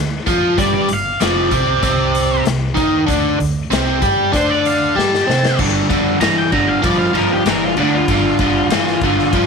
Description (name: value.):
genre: blues rock power trio and southern rock.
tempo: 96 BPM.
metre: 4/4.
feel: straight.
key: unclear.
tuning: A4 = 440 Hz.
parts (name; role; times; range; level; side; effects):
biting overdriven guitar; riff; 0.0-9.5 s; F2 to C5; -16 LUFS; equal; none.
upright bass; bass; 0.0-9.5 s; F1 to C3; -23 LUFS; right 1 dB; none.
raw garage drum kit; drums; 0.3-9.5 s; crash cymbal, hi-hat, kick drum, ride cymbal, snare drum; -21 LUFS; left 4 dB; none.
octave-fuzz lead guitar; melody; 0.6-9.5 s; D4 to Bb5; -20 LUFS; equal; distortion.
room: light reverb, small room ambience.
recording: 1960s-style stereo.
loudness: -13 LUFS.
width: side -5 dB against mid.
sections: 0.0-5.6 A section; 5.6-9.5 B section.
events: drum fill 5.0-5.6; lead electric guitar solo 5.6-9.5.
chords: 0.0 Dm; 0.6 G5; 1.8 Cm; 3.1 D5; 5.6 G7(no3).